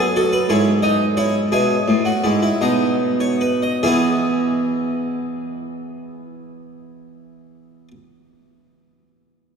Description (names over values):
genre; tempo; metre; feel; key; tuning
classical, baroque-style 3-part fugue for harpsichord; 47-61 BPM (dotted quarters); 6/8; straight; E major; A4 = 440 Hz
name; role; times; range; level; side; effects
harpsichord; solo; 0.0-7.9 s; F#2 to E5; -17 LUFS; right 1 dB; none
room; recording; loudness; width
wet cathedral reverb, RT60 5.2 s; recorded in a church or concert hall; -16 LUFS; side -6 dB against mid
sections
0.0-3.8 A section; 3.8-8.9 B section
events
slowing down 0.0-3.8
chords
0.5 E/G#; 1.5 E; 2.6 B; 3.8 E